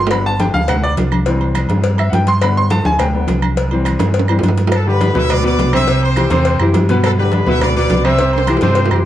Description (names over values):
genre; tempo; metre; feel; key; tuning
latin, salsa; 208 BPM; 4/4; straight; G major; A4 = 440 Hz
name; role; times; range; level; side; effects
bright grand piano; accompaniment; 0.0-9.1 s; B2 to C6; -17 LUFS; left 1 dB; none
fingered electric bass; bass; 0.0-9.0 s; G1 to G2; -16 LUFS; equal; none
claves; percussion; 0.1-9.1 s; none; -30 LUFS; right 5 dB; none
congas; percussion; 0.1-9.1 s; none; -21 LUFS; left 1 dB; none
cowbell; percussion; 0.1-8.9 s; none; -24 LUFS; left 5 dB; none
timbales and agogo bells; percussion; 0.1-9.1 s; none; -23 LUFS; right 6 dB; none
bright trumpet section; melody; 4.7-9.0 s; A4 to E6; -20 LUFS; left 1 dB; none
room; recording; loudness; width
light reverb; worn, warbling old tape, cassette tape, warbly pitch drift; -12 LUFS; side -12 dB against mid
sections
0.0-4.7 A section; 4.7-9.1 B section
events
grand piano solo 0.0-4.7; drum fill 4.0-4.7, 8.2-9.1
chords
0.1 G; 1.3 C; 2.4 G; 3.6 C; 4.7 G; 5.9 C; 7.0 G; 8.2 C